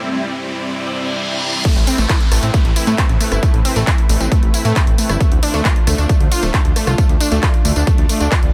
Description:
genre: uplifting trance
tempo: 135 BPM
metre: 4/4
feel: straight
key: A minor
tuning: A4 = 441 Hz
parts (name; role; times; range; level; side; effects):
- lush unison pad; sustained chords; 0.0-8.5 s; G3 to D5; -27 LUFS; equal; chorus, phaser, sidechain pumping
- riser, reverse cymbal and downlifter; sound effects; 0.0-5.2 s; none; -27 LUFS; equal; none
- unison pluck; arpeggios; 1.6-8.4 s; A3 to F4; -24 LUFS; equal; sidechain pumping, tape echo
- electronic kick drum; drums; 1.6-8.4 s; none; -17 LUFS; equal; overdrive, high-pass filter on kick
- punchy analog drum machine; drums; 1.6-8.5 s; crash cymbal, handclaps, hi-hat, rim click, tambourine; -25 LUFS; equal; none
- fat analog bass; bass; 1.8-8.5 s; D1 to A2; -20 LUFS; equal; sidechain pumping
room: little or no reverb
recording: none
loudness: -16 LUFS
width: mono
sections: 0.0-1.6 A section; 1.6-8.5 B section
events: break 0.0-1.6; build-up 0.0-1.6; riser 0.0-1.6; reverse cymbal 0.8-1.6; drop 1.6-8.5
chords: 0.0 C; 1.6 Amadd9; 5.2 Dm7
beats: 0.32 0.76 1.21 | 1.65 2.09 2.54 2.98 | 3.43 3.87 4.32 4.76 | 5.21 5.65 6.09 6.54 | 6.98 7.43 7.87 8.32

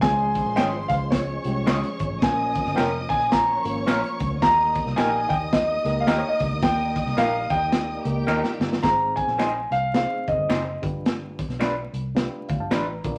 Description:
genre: uptempo 1960s-style soul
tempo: 109 BPM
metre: 4/4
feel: swing 60% on 8ths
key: Ab major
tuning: A4 = 440 Hz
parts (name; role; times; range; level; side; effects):
- warm grand piano; melody; 0.0-10.8 s; Db5 to Bb5; -25 LUFS; equal; none
- warm studio string section; second line; 0.0-8.8 s; G4 to Eb6; -36 LUFS; equal; none
- mellow reed electric piano; accompaniment; 0.0-13.2 s; Ab3 to Bb5; -34 LUFS; equal; fast tremolo
- percussive tonewheel organ; sustained chords; 0.0-8.8 s; F3 to Eb4; -37 LUFS; equal; overdrive, chorus vibrato, slow rotary speaker
- vintage muted picked electric bass; bass; 0.0-13.2 s; F1 to Eb2; -33 LUFS; equal; none
- crunchy breakbeat drum kit; drums; 0.0-13.2 s; hi-hat, kick drum, snare drum; -28 LUFS; equal; none
- electric guitar through a small old amp; stabs; 0.6-12.8 s; G3 to C5; -30 LUFS; equal; none
- finger snaps; percussion; 0.6-12.9 s; none; -38 LUFS; equal; none
room: wet studio reverb, RT60 0.8 s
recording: vinyl crackle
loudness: -23 LUFS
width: mono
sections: 0.0-8.8 A section; 8.8-13.2 B section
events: drum fill 8.3-8.8; reed electric piano fill 12.2-13.2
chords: 0.0 Db; 2.2 Bbm; 4.4 Eb; 8.8 Ab; 10.8 G7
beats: | 0.02 0.57 1.12 1.67 | 2.22 2.77 3.32 3.87 | 4.42 4.97 5.52 6.07 | 6.62 7.17 7.73 8.28 | 8.83 9.38 9.94 10.49 | 11.05 11.60 12.16 12.71

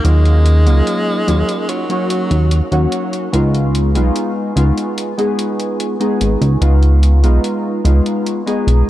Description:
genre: vaporwave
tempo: 73 BPM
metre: 4/4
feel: straight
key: unclear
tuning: A4 = 440 Hz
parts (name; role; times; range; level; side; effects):
- edgy tenor saxophone; melody; 0.0-2.9 s; Gb3 to Ab3; -22 LUFS; equal; tape echo
- warbly lo-fi synth keys; accompaniment; 0.0-8.9 s; Gb3 to Ab4; -18 LUFS; equal; lush chorus, tape echo
- warbly tape-like pad; sustained chords; 0.0-8.9 s; Eb4 to Db6; -26 LUFS; right 2 dB; chorus, built-in reverb
- chorused synth bass; bass; 0.0-8.8 s; Ab1 to Eb2; -11 LUFS; equal; tube saturation
- electronic hi-hat; drums; 0.0-8.8 s; none; -27 LUFS; left 1 dB; overdrive
room: light reverb, digital ambience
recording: cassette tape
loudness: -12 LUFS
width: side -14 dB against mid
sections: 0.0-8.9 A section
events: none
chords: 0.0 Ebm7; 3.3 Db7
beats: | 0.05 0.87 1.69 2.51 | 3.33 4.16 4.98 5.80 | 6.62 7.44 8.27

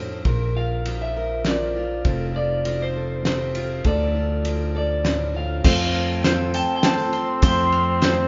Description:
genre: indie folk with a building arrangement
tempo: 100 BPM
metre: 3/4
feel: straight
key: F major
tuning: A4 = 441 Hz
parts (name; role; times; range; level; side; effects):
- electric guitar through a small old amp; melody; 0.0-8.3 s; C5 to C6; -29 LUFS; equal; harmonic tremolo
- fingerpicked steel-string acoustic guitar; accompaniment; 0.0-7.4 s; F2 to Bb4; -32 LUFS; equal; none
- fingered electric bass; bass; 0.0-8.3 s; F1 to F2; -28 LUFS; equal; none
- cloth-damped thuddy drum kit; drums; 0.2-8.2 s; crash cymbal, hi-hat, kick drum, ride cymbal, snare drum; -26 LUFS; equal; none
- warm trombone; second line; 5.6-8.3 s; C4; -28 LUFS; equal; none
- bright upright piano; accompaniment; 5.6-8.3 s; F1 to D5; -35 LUFS; equal; none
- picked steel-string acoustic guitar; accompaniment; 5.6-8.3 s; F3 to A4; -31 LUFS; equal; none
- bowl-back mandolin; arpeggios; 5.6-8.3 s; C5 to C6; -30 LUFS; equal; none
- tambourine; percussion; 5.6-7.7 s; none; -42 LUFS; equal; none
room: moderate large studio reverb, RT60 1.3 s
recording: band playing live in one room, nothing above 7.5 kHz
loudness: -22 LUFS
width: mono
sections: 0.0-5.6 A section; 5.6-8.3 B section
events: none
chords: 0.3 Bb; 2.1 F; 3.9 Dm; 5.6 F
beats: | 0.26 0.86 1.46 | 2.06 2.65 3.25 | 3.85 4.45 5.05 | 5.64 6.24 6.83 | 7.43 8.02

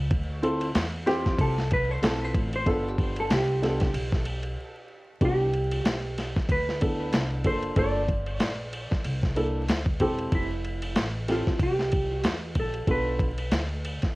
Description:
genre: hip hop, jazz-hop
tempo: 94 BPM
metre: 4/4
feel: swing 57% on 16ths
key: C major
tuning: A4 = 440 Hz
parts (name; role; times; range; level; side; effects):
- upright bass; bass; 0.0-14.1 s; E1 to E2; -30 LUFS; equal; none
- dusty soul sampler-style drum kit; drums; 0.1-14.2 s; hi-hat, kick drum, ride cymbal, snare drum; -28 LUFS; equal; overdrive
- dark baby grand piano; accompaniment; 0.4-13.3 s; Bb3 to A4; -28 LUFS; equal; none
- hollow-body jazz guitar; melody; 1.4-14.2 s; E4 to D5; -30 LUFS; right 1 dB; analog delay
room: moderate studio reverb, RT60 0.5 s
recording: worn, warbling old tape, cassette tape, vinyl crackle, warbly pitch drift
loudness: -24 LUFS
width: side -21 dB against mid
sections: 0.0-5.2 A section; 5.2-14.2 B section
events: hollow-body jazz guitar solo 0.0-5.2; break 4.6-5.2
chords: 0.1 Dm9; 2.7 G7; 5.2 Cmaj7; 7.8 Gm9; 9.0 C13; 10.3 Fmaj7; 12.9 Bm7b5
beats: | 0.11 0.75 1.39 2.03 | 2.66 3.30 3.94 4.58 | 5.22 5.86 6.49 7.13 | 7.77 8.41 9.05 9.69 | 10.32 10.96 11.60 12.24 | 12.88 13.52

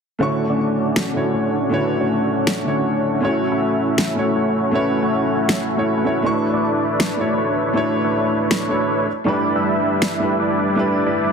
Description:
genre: future bass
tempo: 159 BPM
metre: 4/4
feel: swing 54% on 16ths, half-time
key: unclear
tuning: A4 = 439 Hz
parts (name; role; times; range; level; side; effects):
- dark baby grand piano; accompaniment; 0.2-11.3 s; D3 to C#6; -22 LUFS; right 2 dB; ping-pong delay
- dense compressed supersaw; riff; 0.2-11.3 s; G3 to E5; -19 LUFS; equal; low-pass filter, ping-pong delay
- electronic finger snaps and snare drum; drums; 1.0-10.1 s; none; -20 LUFS; equal; none
room: moderate digital room reverb, RT60 1.0 s, small room ambience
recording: heavily compressed radio sound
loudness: -17 LUFS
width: side -6 dB against mid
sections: 0.2-11.3 A section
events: none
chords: 0.2 Dmaj7; 3.2 F#m7; 6.2 Bm11; 9.1 G6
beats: | 0.21 0.58 0.96 1.34 | 1.72 2.09 2.47 2.85 | 3.23 3.60 3.98 4.36 | 4.74 5.11 5.49 5.87 | 6.25 6.62 7.00 7.38 | 7.75 8.13 8.51 8.89 | 9.26 9.64 10.02 10.40 | 10.77 11.15

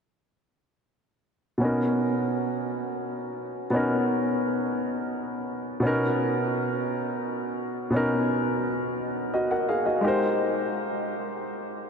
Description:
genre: R&B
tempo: 57 BPM (dotted quarters)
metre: 6/8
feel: straight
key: unclear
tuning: A4 = 440 Hz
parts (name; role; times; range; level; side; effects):
- warm grand piano; solo; 1.6-11.9 s; B2 to F#5; -24 LUFS; equal; analog delay
room: wet huge ambient reverb, RT60 7.2 s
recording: dreamy mix soaked in reverb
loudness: -24 LUFS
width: side -6 dB against mid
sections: 1.6-5.8 A section; 5.8-11.9 B section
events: none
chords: 1.6 Bmaj7; 10.0 Abmaj9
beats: | 1.61 2.67 | 3.72 4.77 | 5.83 6.88 | 7.93 8.98 | 10.04 11.09

